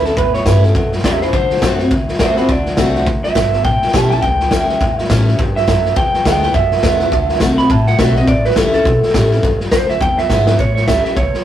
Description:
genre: rockabilly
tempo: 207 BPM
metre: 4/4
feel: swing 60% on 8ths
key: A mixolydian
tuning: A4 = 440 Hz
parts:
  - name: electric guitar through a small old amp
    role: melody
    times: 0.0-11.4 s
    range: E4 to B5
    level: -17 LUFS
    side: right 2 dB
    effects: none
  - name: picked steel-string acoustic guitar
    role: accompaniment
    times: 0.0-11.4 s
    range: E2 to F#4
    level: -18 LUFS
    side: left 1 dB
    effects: none
  - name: upright bass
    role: bass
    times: 0.0-11.4 s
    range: G1 to A2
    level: -18 LUFS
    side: equal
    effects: none
  - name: raw garage drum kit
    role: drums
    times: 0.1-11.4 s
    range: hi-hat, kick drum, snare drum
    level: -17 LUFS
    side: equal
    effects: none
room: light reverb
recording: rough rehearsal-room recording, faint mains hum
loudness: -12 LUFS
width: side -11 dB against mid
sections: 0.0-10.6 A section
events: clean electric guitar solo 0.0-10.6; drum fill 10.3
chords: 0.0 A7; 1.3 D7; 3.6 A7; 6.0 E7; 7.1 D7; 8.3 A7; 10.0 E7; 10.6 A7

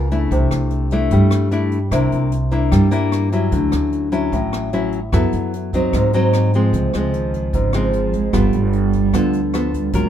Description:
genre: bossa nova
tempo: 150 BPM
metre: 4/4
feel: straight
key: unclear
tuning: A4 = 440 Hz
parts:
  - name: nylon-string guitar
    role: accompaniment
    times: 0.0-10.1 s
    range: G#2 to Bb4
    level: -18 LUFS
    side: left 1 dB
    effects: none
  - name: upright bass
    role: bass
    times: 0.0-10.1 s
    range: Gb1 to G#2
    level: -19 LUFS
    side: equal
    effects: none
  - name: jazz brush drum kit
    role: drums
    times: 0.1-10.0 s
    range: hi-hat, kick drum, rim click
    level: -26 LUFS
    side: equal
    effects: none
  - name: dark cello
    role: second line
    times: 6.7-10.1 s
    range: C3 to Ab3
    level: -22 LUFS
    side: right 8 dB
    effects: none
room: light reverb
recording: minimal, uncompressed stereo recording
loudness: -15 LUFS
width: side -10 dB against mid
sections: 0.0-6.7 A section; 6.7-10.1 B section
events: none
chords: 0.3 C69; 1.9 C9; 3.5 Dmaj9; 5.1 F#m7; 5.9 G#7; 6.7 Dbmaj7; 8.3 G9

